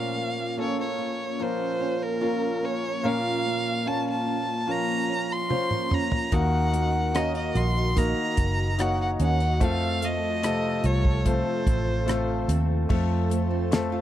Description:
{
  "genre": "pop ballad",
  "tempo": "73 BPM",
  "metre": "4/4",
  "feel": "straight",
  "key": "Bb harmonic minor",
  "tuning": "A4 = 441 Hz",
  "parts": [
    { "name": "warm violin", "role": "melody", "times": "0.0-12.5 s", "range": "Bb4 to C6", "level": "-29 LUFS", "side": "right 1 dB", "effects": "none" },
    { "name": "clear concert grand piano", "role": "accompaniment", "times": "0.0-14.0 s", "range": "Bb2 to Db5", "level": "-29 LUFS", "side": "left 4 dB", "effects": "none" },
    { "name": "airy breathy pad", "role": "sustained chords", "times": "0.0-14.0 s", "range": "Bb3 to A5", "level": "-33 LUFS", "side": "equal", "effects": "chorus" },
    { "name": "nylon-string guitar", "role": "arpeggios", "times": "0.0-14.0 s", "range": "F2 to Gb4", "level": "-34 LUFS", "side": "right 11 dB", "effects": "none" },
    { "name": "damped 70s drum kit", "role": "drums", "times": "5.5-13.9 s", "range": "crash cymbal, hi-hat, kick drum, rim click, snare drum, toms", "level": "-26 LUFS", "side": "equal", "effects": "none" },
    { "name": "vintage muted fingered electric bass", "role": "bass", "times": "6.3-14.0 s", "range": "Gb1 to F2", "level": "-26 LUFS", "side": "equal", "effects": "none" }
  ],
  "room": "small room ambience",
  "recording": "dry, close 1970s-style studio recording",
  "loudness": "-23 LUFS",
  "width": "side -12 dB against mid",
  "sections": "0.0-12.9 A section; 12.9-14.0 B section",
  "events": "drum fill 5.5-6.3",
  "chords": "0.0 Bbm; 6.3 Ebm; 9.6 F"
}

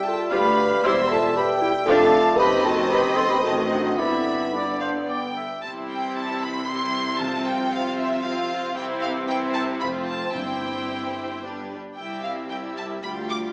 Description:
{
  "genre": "quick classical-period movement for symphony orchestra",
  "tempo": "114 BPM",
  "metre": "3/4",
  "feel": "rubato",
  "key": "C major",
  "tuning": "A4 = 440 Hz",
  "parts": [
    { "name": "rich chamber violin section", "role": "melody", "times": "0.0-13.4 s", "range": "D#5 to D6", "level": "-32 LUFS", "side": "equal", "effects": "none" },
    { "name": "clear chamber violin section", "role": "second line", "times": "0.0-13.5 s", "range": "F4 to C6", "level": "-35 LUFS", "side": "equal", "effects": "none" },
    { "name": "mellow hollow small flute group", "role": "second line", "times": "0.0-5.1 s", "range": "D5-20c to C6", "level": "-30 LUFS", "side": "equal", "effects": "none" },
    { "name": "warm oboe", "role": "second line", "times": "0.0-5.6 s", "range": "C5 to F5", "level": "-32 LUFS", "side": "equal", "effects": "none" },
    { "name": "mellow bassoon", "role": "accompaniment", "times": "0.0-5.3 s", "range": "G3 to C4", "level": "-31 LUFS", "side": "equal", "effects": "none" },
    { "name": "dark French horn section", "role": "sustained chords", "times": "0.0-13.5 s", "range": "E3 to C5", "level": "-29 LUFS", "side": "equal", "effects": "none" },
    { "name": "mellow clarinet", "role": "second line", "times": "0.1-5.1 s", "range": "B3 to A4", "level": "-29 LUFS", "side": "equal", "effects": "none" },
    { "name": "rich studio viola section", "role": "accompaniment", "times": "0.3-13.5 s", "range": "D3 to F4", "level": "-32 LUFS", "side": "equal", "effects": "none" },
    { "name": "clear chamber cello section", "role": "bass", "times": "0.3-13.5 s", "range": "C2 to C3", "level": "-35 LUFS", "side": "equal", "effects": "none" },
    { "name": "clear studio double bass section", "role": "bass", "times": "0.3-13.5 s", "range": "E1 to D2", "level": "-40 LUFS", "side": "equal", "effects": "none" },
    { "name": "timpani", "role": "percussion", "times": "7.2-8.0, 10.3-11.1 s", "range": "G2 to C3", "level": "-42 LUFS", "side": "equal", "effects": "none" }
  ],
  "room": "wet recital hall reverb, RT60 1.2 s",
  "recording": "small speaker sound",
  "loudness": "-23 LUFS",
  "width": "mono",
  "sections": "0.0-5.6 A section; 5.6-13.5 A section",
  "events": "none",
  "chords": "0.3 G7/D; 0.8 Fmaj9#11/E; 1.9 Dm/F; 2.4 F#dim7; 4.0 G; 5.6 C; 7.2 F5/C; 8.8 C; 9.8 F; 10.4 C/G; 11.4 G; 12.0 C"
}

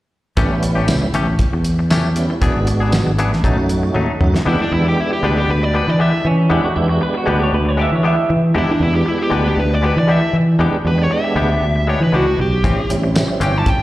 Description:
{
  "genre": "straight-eighth soul blues",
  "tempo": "117 BPM",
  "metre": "4/4",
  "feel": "straight",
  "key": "unclear",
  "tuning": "A4 = 442 Hz",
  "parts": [
    { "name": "tonewheel organ", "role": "accompaniment", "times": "0.4-13.6 s", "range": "G3 to G4", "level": "-22 LUFS", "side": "right 2 dB", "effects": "slow rotary speaker, overdrive, chorus vibrato, slapback echo" },
    { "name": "direct-recorded clean electric guitar", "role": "stabs", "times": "0.4-13.8 s", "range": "E3 to G#4", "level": "-23 LUFS", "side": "left 4 dB", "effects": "slapback echo" },
    { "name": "fingered electric bass", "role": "bass", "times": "0.4-13.8 s", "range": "E1 to E3", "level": "-16 LUFS", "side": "equal", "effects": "none" },
    { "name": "cloth-damped thuddy drum kit", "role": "drums", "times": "0.4-4.5, 12.6-13.8 s", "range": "hi-hat, kick drum, snare drum, tambourine, toms", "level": "-19 LUFS", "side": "equal", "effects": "none" },
    { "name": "dark smooth lead guitar", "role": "melody", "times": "4.5-13.8 s", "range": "D4 to A5", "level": "-20 LUFS", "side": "equal", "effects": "overdrive, slapback echo" },
    { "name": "electric guitar through a small old amp", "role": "second line", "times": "6.3-8.3 s", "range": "C#4 to E5", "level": "-21 LUFS", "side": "right 3 dB", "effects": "slapback echo" }
  ],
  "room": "light reverb, studio reverb",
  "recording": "live gig heard through the venue's PA, recital hall reverb",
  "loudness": "-14 LUFS",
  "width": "side -16 dB against mid",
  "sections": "0.4-4.5 A section; 4.5-13.8 B section",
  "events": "drum fill 4.0-4.5",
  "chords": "0.4 A7; 2.4 E7; 3.4 B7 (rootless); 4.5 E7#9; 12.6 A7#9"
}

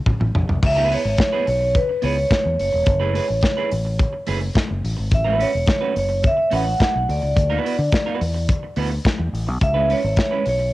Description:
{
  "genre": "disco",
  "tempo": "107 BPM",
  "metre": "4/4",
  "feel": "straight",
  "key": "unclear",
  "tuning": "A4 = 440 Hz",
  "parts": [
    { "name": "semi-hollow electric guitar", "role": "accompaniment", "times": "0.1-10.6 s", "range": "G#3 to B4", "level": "-28 LUFS", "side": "right 7 dB", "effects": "none" },
    { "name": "modern studio drum kit", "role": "drums", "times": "0.1-10.6 s", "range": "crash cymbal, hi-hat, kick drum, snare drum, toms", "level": "-21 LUFS", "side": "left 1 dB", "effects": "cassette tape" },
    { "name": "fingered electric bass", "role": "bass", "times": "0.2-10.7 s", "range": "E1 to D3", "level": "-22 LUFS", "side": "left 1 dB", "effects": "none" },
    { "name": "vibraphone with medium hard mallets", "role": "melody", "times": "0.7-10.7 s", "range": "B4 to F#5", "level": "-21 LUFS", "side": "right 1 dB", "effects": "cassette tape, tape echo" }
  ],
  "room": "studio reverb",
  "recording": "home recording on cassette",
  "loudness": "-17 LUFS",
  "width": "side -17 dB against mid",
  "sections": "0.6-10.7 A section",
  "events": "drum fill 0.0-0.6",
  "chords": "0.0 G#; 0.6 C#m7; 2.6 F#m11; 4.8 A69; 7.1 D69; 9.6 C#m7"
}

